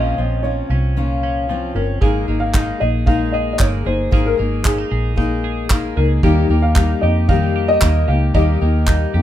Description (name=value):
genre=acoustic pop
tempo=114 BPM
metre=4/4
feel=straight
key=Ab major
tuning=A4 = 439 Hz
part: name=dark upright piano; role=melody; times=0.0-9.2 s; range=G4 to F5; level=-22 LUFS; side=equal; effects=none
part: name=fingerpicked steel-string acoustic guitar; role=accompaniment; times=0.0-9.2 s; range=Bb2 to Ab4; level=-21 LUFS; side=left 5 dB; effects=none
part: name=twelve-string electric guitar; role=arpeggios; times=0.0-9.2 s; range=F3 to Ab4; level=-29 LUFS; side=right 5 dB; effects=none
part: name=vintage muted fingered electric bass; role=bass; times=0.0-9.2 s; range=G1 to F2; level=-18 LUFS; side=right 1 dB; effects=none
part: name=unplugged drum kit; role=drums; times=2.0-9.0 s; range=handclaps, kick drum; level=-17 LUFS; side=right 1 dB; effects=none
room=light reverb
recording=minimal, uncompressed stereo recording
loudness=-15 LUFS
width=side -12 dB against mid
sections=0.0-9.2 A section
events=none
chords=0.0 Bbmadd9; 2.0 Absus2; 6.2 Eb